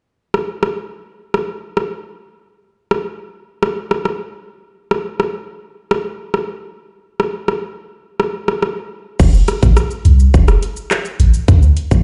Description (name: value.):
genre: dancehall.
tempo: 105 BPM.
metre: 4/4.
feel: straight.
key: F major.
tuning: A4 = 440 Hz.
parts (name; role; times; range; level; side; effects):
island pop drum kit; drums; 0.3-12.0 s; crash cymbal, handclaps, hi-hat, kick drum, rim click, shaker; -19 LUFS; equal; overdrive.
punchy sub bass; bass; 9.2-12.0 s; F1 to D2; -12 LUFS; equal; none.
room: light reverb, digital ambience.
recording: played on a big sound system in a bare room, large studio reverb, nothing above 10.8 kHz.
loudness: -16 LUFS.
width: mono.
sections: 0.1-9.2 A section; 9.2-12.0 B section.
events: none.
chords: none.